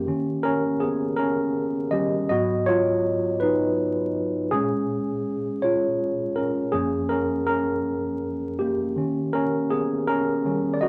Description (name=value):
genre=R&B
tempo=54 BPM (dotted quarters)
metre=6/8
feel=straight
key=unclear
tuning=A4 = 438 Hz
part: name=tine electric piano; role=solo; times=0.0-10.9 s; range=F#2 to D#5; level=-24 LUFS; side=equal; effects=none
room=moderate studio ambience, RT60 0.5 s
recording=vinyl crackle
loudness=-24 LUFS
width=mono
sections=0.0-10.9 A section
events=tine electric piano solo 0.0-10.9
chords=0.1 D#7; 2.3 G#m7; 4.5 A#m7; 6.7 F#maj7; 9.0 D#7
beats=| 0.07 1.18 | 2.29 3.40 | 4.51 5.62 | 6.73 7.84 | 8.96 10.07